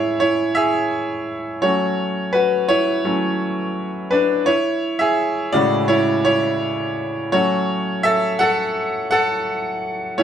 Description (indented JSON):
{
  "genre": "pop",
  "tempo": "84 BPM",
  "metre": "4/4",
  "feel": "straight",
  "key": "F# minor",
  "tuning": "A4 = 441 Hz",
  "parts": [
    { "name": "bright grand piano", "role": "solo", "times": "0.0-10.2 s", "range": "A2 to F#5", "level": "-17 LUFS", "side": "equal", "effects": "none" }
  ],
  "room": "wet studio reverb, RT60 0.8 s",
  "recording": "band playing live in one room",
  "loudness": "-17 LUFS",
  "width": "side -9 dB against mid",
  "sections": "0.0-10.2 A section",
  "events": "grand piano solo 0.0-10.2",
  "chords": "0.0 Amaj7; 1.6 F#m; 4.5 Amaj7; 7.3 F#m",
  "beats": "0.20 0.92 | 1.63 2.34 3.06 3.77 | 4.48 5.19 5.91 6.62 | 7.33 8.04 8.76 9.47 | 10.18"
}